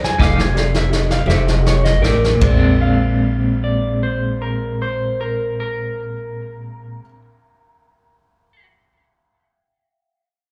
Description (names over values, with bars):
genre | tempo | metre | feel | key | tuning
slow blues | 50-58 BPM (dotted quarters) | 12/8 | straight | Bb mixolydian | A4 = 440 Hz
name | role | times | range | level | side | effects
electric guitar through a small old amp | second line | 0.0-8.7 s | Bb4 to Ab5 | -26 LUFS | equal | phaser, tape echo
dark upright piano | accompaniment | 0.0-7.0 s | G4 to Eb5 | -30 LUFS | equal | none
upright bass | bass | 0.0-7.0 s | F1 to F2 | -21 LUFS | equal | none
vintage brush drum kit | drums | 0.0-2.6 s | kick drum, ride cymbal, snare drum, toms | -22 LUFS | equal | none
clean electric guitar | accompaniment | 0.2-7.2 s | Bb2 to G4 | -23 LUFS | equal | tremolo
room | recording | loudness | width
light reverb | live gig heard through the venue's PA, club reverb | -17 LUFS | mono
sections
0.0-2.4 A section; 2.4-7.2 B section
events
drum fill 0.0-2.4; slowing down 0.0-2.4; clean electric guitar solo 0.0-2.4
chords
0.2 F9; 2.4 Bb9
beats
0.20 1.27 | 2.42 3.61 4.80 6.00